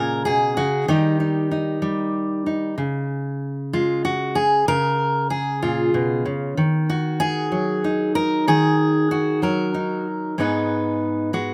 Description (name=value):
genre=folk, solo fingerstyle acoustic guitar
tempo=63 BPM (dotted quarters)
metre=6/8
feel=straight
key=unclear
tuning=A4 = 441 Hz
part: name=fingerpicked steel-string acoustic guitar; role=solo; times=0.0-11.5 s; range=G#2 to B4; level=-22 LUFS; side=equal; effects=none
room=little or no reverb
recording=recorded outdoors, with no room sound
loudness=-21 LUFS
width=mono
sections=0.0-2.8 A section; 2.8-11.5 B section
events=none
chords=0.0 C#5; 0.9 D#; 2.8 C#; 6.6 D#m; 10.4 G#m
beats=| 0.88 1.83 | 2.79 3.74 | 4.69 5.63 | 6.58 7.52 | 8.47 9.43 | 10.38 11.33